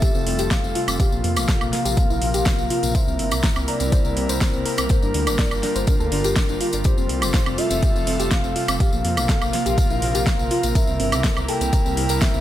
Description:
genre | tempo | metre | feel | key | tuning
progressive house | 123 BPM | 4/4 | straight | F major | A4 = 440 Hz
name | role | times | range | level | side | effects
soft octave-layered synth lead | melody | 0.0-12.4 s | Bb4 to G5 | -28 LUFS | left 2 dB | chorus, tremolo, vintage 12-bit sampler grit, sidechain pumping, digital delay
airy breathy pad | sustained chords | 0.0-12.4 s | C3 to Bb4 | -27 LUFS | right 1 dB | chorus, sidechain pumping
soft round pluck | arpeggios | 0.0-12.4 s | Bb3 to D5 | -27 LUFS | equal | wide subtle chorus, sidechain pumping, dub echo
deep house drum kit | drums | 0.0-12.3 s | hi-hat, snare drum, woodblock | -26 LUFS | equal | small room reverb
electronic kick drum | drums | 0.0-12.3 s | none | -20 LUFS | equal | small room reverb
tambourine | percussion | 0.0-12.4 s | none | -31 LUFS | left 4 dB | none
dark detuned saw bass | bass | 0.1-12.4 s | F1 to F2 | -26 LUFS | equal | sidechain pumping
room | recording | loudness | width
little or no reverb | none | -18 LUFS | side -12 dB against mid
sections
0.0-12.4 A section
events
none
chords
0.0 Fadd9; 1.0 Bbsus2; 2.9 C7; 4.9 Gm7; 6.9 Fadd9; 8.8 Bbsus2; 10.8 C7

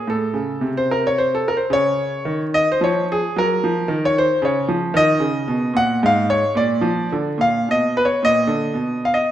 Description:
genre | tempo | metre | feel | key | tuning
classical, baroque-style suite movement for grand piano | 111 BPM | 3/4 | rubato | unclear | A4 = 440 Hz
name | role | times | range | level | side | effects
warm concert grand piano | solo | 0.0-9.3 s | Ab2 to F#5 | -16 LUFS | equal | none
room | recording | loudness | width
wet recital hall reverb, RT60 1.3 s | none | -16 LUFS | side -11 dB against mid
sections
0.0-9.3 A section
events
none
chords
0.1 Am; 1.7 Dbadd9; 3.3 Gb; 4.9 B; 6.0 N.C.; 6.6 Bb; 7.7 N.C.; 8.2 Bb; 8.8 N.C.

